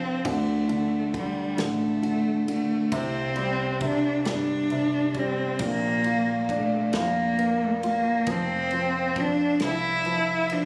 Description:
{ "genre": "six-eight pop ballad", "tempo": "45 BPM (dotted quarters)", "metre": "6/8", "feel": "straight", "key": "F major", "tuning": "A4 = 440 Hz", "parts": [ { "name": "dark cello", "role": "melody", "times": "0.0-10.7 s", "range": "G3 to E4", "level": "-27 LUFS", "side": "equal", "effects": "delay" }, { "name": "warm concert grand piano", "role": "accompaniment", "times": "0.0-10.7 s", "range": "Bb2 to F4", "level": "-31 LUFS", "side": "equal", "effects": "none" }, { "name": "woody fretless electric bass", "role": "bass", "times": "0.0-10.7 s", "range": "F1 to F2", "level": "-39 LUFS", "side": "equal", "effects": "analog chorus" }, { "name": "unplugged drum kit", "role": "drums", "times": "0.2-10.7 s", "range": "kick drum, ride cymbal, snare drum", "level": "-40 LUFS", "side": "equal", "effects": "none" } ], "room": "light reverb, small room ambience", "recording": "recorded on a phone in the room, studio reverb", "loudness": "-25 LUFS", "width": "mono", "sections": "0.0-10.7 A section", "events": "none", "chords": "0.3 D5; 2.9 Csus2; 5.6 Bb; 8.3 F5" }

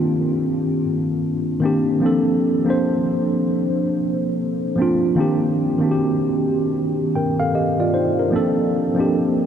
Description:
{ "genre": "hip hop", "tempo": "76 BPM", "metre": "4/4", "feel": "swing 63% on 16ths", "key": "unclear", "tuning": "A4 = 442 Hz", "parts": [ { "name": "mellow tine electric piano", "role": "solo", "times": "0.0-9.5 s", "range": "Eb3 to G5", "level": "-17 LUFS", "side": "equal", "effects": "medium stereo tremolo, cassette tape" } ], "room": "wet huge ambient reverb, RT60 8.4 s", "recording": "dreamy mix soaked in reverb", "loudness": "-17 LUFS", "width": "side -8 dB against mid", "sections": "0.0-9.5 A section", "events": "none", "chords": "0.0 Cm7; 2.0 Bbmaj9; 5.2 Cm7; 8.3 Bbmaj9" }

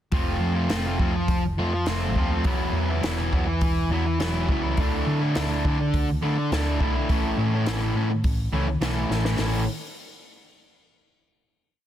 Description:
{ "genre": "indie rock", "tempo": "104 BPM", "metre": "4/4", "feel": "straight", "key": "A major", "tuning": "A4 = 440 Hz", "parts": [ { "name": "fuzz guitar", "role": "riff", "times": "0.1-9.6 s", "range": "A2 to F4", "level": "-25 LUFS", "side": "equal", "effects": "distortion" }, { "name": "hollow-body short-scale fingered electric bass", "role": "bass", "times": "0.1-9.7 s", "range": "E1 to D3", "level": "-26 LUFS", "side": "equal", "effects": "none" }, { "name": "compact cocktail drum kit", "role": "drums", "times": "0.1-9.5 s", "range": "hi-hat, kick drum, snare drum", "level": "-27 LUFS", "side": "equal", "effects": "soft clipping on snare" } ], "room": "small room ambience", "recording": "dense, heavily limited modern master", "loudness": "-22 LUFS", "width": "side -11 dB against mid", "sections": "0.1-9.4 verse; 9.4-11.7 final chord", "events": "drum fill 9.1", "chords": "0.1 F; 2.4 Esus2; 4.8 Dsus2; 7.1 A" }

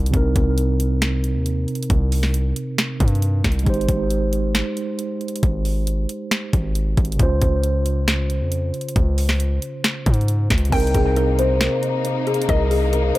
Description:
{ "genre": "hip hop, trap", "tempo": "136 BPM", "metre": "4/4", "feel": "half-time", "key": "C phrygian", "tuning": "A4 = 440 Hz", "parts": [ { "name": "mellow tine electric piano", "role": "accompaniment", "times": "0.0-13.2 s", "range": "C3 to C5", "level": "-24 LUFS", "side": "right 2 dB", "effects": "medium stereo tremolo, low-pass filter, analog delay" }, { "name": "hard-hitting 808-style bass", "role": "bass", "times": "0.0-13.1 s", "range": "Ab1 to Ab2", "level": "-20 LUFS", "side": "equal", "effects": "none" }, { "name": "trap drum kit", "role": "drums", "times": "0.1-13.2 s", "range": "crash cymbal, finger snaps, hi-hat, kick drum, snare drum", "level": "-21 LUFS", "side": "equal", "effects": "none" }, { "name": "kalimba", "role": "melody", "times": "10.7-13.2 s", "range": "Ab4 to C5", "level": "-21 LUFS", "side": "left 2 dB", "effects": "low-pass filter, analog delay" }, { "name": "warbly dusty pluck", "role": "second line", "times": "10.7-12.9 s", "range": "Eb5 to G5", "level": "-28 LUFS", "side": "left 2 dB", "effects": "chorus, analog delay" }, { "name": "warm studio string section", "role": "sustained chords", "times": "10.7-13.2 s", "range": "C3 to Eb4", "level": "-28 LUFS", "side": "left 4 dB", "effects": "none" } ], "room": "little or no reverb", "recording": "echo-heavy mix", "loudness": "-18 LUFS", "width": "side -17 dB against mid", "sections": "0.0-10.7 A section; 10.7-13.2 B section", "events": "none", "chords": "0.0 Cm7; 3.7 Abmaj7; 7.2 Dbmaj7; 10.7 Cm7" }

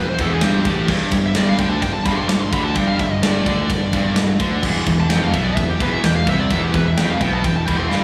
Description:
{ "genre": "heavy metal", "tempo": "128 BPM", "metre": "4/4", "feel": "straight", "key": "E phrygian", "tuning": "A4 = 440 Hz", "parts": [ { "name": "high-gain lead guitar", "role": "melody", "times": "0.0-8.0 s", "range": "G4 to D6", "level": "-27 LUFS", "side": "equal", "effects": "distortion" }, { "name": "distorted electric guitar", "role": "riff", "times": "0.0-8.0 s", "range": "E2 to D3", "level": "-28 LUFS", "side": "equal", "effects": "none" }, { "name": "distorted electric guitar", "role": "riff", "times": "0.0-8.0 s", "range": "E2 to D3", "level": "-28 LUFS", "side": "equal", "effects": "none" }, { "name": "scooped high-gain guitar", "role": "riff", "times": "0.0-8.0 s", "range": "E2 to D3", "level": "-25 LUFS", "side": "equal", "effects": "distortion" }, { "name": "fuzz fingered electric bass", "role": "bass", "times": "0.0-8.0 s", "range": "E1 to D2", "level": "-24 LUFS", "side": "equal", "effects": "overdrive" }, { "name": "tight metal drum kit", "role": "drums", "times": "0.2-8.0 s", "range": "crash cymbal, kick drum, ride cymbal, snare drum", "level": "-24 LUFS", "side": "equal", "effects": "none" }, { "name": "pipe organ, cornet", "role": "sustained chords", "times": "0.9-8.0 s", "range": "E3 to A4", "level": "-38 LUFS", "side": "equal", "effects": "none" } ], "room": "wet church reverb, RT60 2.8 s", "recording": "band playing live in one room", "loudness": "-18 LUFS", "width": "mono", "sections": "0.0-8.0 A section", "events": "lead electric guitar solo 0.0-8.0", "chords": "0.0 Em; 0.9 G5; 4.6 Em" }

